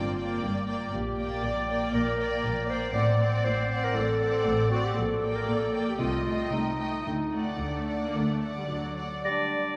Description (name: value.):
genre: classical, dramatic, fast romantic movement for symphony orchestra.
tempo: 108-121 BPM.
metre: 4/4.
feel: rubato.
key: G minor.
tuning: A4 = 439 Hz.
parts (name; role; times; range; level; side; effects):
warm symphonic violin section; melody; 0.0-9.2 s; F#5 to G5; -43 LUFS; equal; none.
rich studio violin section; second line; 0.0-9.2 s; D5 to Eb5; -37 LUFS; equal; none.
warm clarinet; second line; 0.0-9.8 s; D4 to D5; -33 LUFS; equal; none.
rich symphonic viola section; accompaniment; 0.0-9.2 s; F#3 to C4; -37 LUFS; equal; none.
clear symphonic cello section; bass; 0.0-9.2 s; G2 to D3; -38 LUFS; equal; none.
rich symphonic double bass section; bass; 0.0-9.2 s; G1 to D2; -35 LUFS; equal; none.
clear oboe; second line; 9.2-9.7 s; D5; -31 LUFS; equal; none.
mellow hollow silver concert flute; second line; 9.2-9.5 s; Bb6; -35 LUFS; equal; none.
warm bassoon; accompaniment; 9.3-9.7 s; G3; -35 LUFS; equal; none.
room: wet church reverb, RT60 3.2 s.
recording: recorded in a church or concert hall.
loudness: -28 LUFS.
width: mono.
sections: 0.0-9.2 A section.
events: none.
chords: 0.0 Gm7; 0.9 Gm/Bb; 2.9 D7/A; 5.0 Gm/Bb; 6.0 Am7b5/C; 7.1 D; 9.2 Gm.